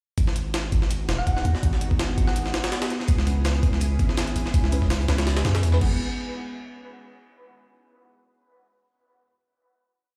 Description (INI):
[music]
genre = drum and bass, jungle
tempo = 165 BPM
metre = 4/4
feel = swing 54% on 16ths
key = G# minor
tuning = A4 = 440 Hz
[part]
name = soft string machine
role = sustained chords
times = 0.2-6.0 s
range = B3 to G#4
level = -36 LUFS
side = equal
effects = phaser, ensemble chorus
[part]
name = long sustained 808-style bass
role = bass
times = 0.2-6.0 s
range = D#1 to F#2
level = -26 LUFS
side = equal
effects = none
[part]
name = jungle sampler-style drum kit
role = drums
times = 0.2-5.9 s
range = crash cymbal, hi-hat, kick drum, snare drum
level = -27 LUFS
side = equal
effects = overdrive
[part]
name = thumb-piano-like synth pluck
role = melody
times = 1.2-2.6 s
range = F#5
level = -36 LUFS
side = equal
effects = chorus, dub echo
[part]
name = crunchy breakbeat drum kit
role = drums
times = 3.1-5.8 s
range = hi-hat, snare drum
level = -43 LUFS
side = equal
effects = none
[part]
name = deep mellow chord stab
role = stabs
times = 3.3-6.0 s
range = D#3 to B4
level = -37 LUFS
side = equal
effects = ensemble chorus, cassette tape, dub echo
[sound]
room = light reverb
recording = played on a big sound system in a bare room, stone room reverb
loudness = -23 LUFS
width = mono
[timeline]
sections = 0.2-6.0 drop; 6.0-7.4 final hit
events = drop 0.2-6.0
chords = 0.2 G#m7; 3.1 C#m7; 5.8 G#m7; 6.0 N.C.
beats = | 0.18 0.54 0.90 1.27 | 1.63 2.00 2.36 2.72 | 3.09 3.45 3.81 4.18 | 4.54 4.90 5.27 5.63